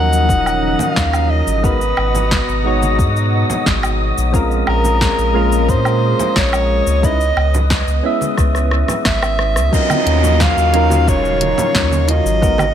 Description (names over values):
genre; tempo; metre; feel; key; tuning
sunset chillout; 89 BPM; 4/4; straight; Eb minor; A4 = 440 Hz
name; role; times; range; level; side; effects
mellow soprano saxophone; melody; 0.0-12.7 s; Bb4 to Gb5; -19 LUFS; equal; digital delay
soft electric-piano-like synth keys; accompaniment; 0.0-12.6 s; F3 to Fb5; -21 LUFS; moving between left 3 dB and right 4 dB; chorus, auto-pan, digital delay
lush unison pad; sustained chords; 0.0-12.7 s; Cb3 to Bb5; -25 LUFS; left 1 dB; chorus
warm sub bass; bass; 0.0-12.7 s; Eb1 to Bb2; -17 LUFS; equal; tube saturation
wind-like tuned noise texture; texture; 0.0-9.7 s; Eb5 to Eb6; -26 LUFS; left 1 dB; built-in reverb
deep house drum kit; drums; 0.1-12.7 s; cabasa, hi-hat, rim click, snare drum, woodblock; -21 LUFS; equal; none
electronic kick drum; drums; 0.3-12.6 s; none; -18 LUFS; equal; overdrive
congas and bongos; percussion; 0.8-12.7 s; none; -24 LUFS; right 4 dB; none
downlifter; sound effects; 9.7-12.7 s; none; -23 LUFS; left 2 dB; none
room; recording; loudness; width
light reverb; none; -13 LUFS; side -9 dB against mid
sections
0.0-9.7 A section; 9.7-12.7 B section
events
drum fill 8.4-9.7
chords
0.0 Ebm9; 1.6 Abm9; 4.3 Bbm9; 7.0 Dbm9; 9.7 Ebm9